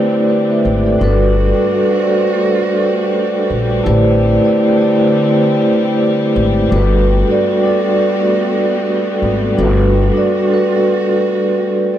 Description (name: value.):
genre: lo-fi hip hop.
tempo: 84 BPM.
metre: 4/4.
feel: swing 59% on 16ths.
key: G major.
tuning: A4 = 440 Hz.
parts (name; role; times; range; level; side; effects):
vibraphone with soft mallets; accompaniment; 0.0-12.0 s; G3 to G5; -13 LUFS; right 1 dB; cassette tape.
warm symphonic string section; sustained chords; 0.0-12.0 s; D3 to F#4; -21 LUFS; left 1 dB; none.
upright bass; bass; 0.7-10.1 s; G1 to Bb1; -15 LUFS; left 1 dB; none.
room: little or no reverb.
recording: dry, gritty hardware recording, transformer saturation.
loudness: -11 LUFS.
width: side -11 dB against mid.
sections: 0.0-12.0 A section.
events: none.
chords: 0.0 Am11; 1.0 Gmaj9; 3.9 Am11; 6.7 Gmaj9.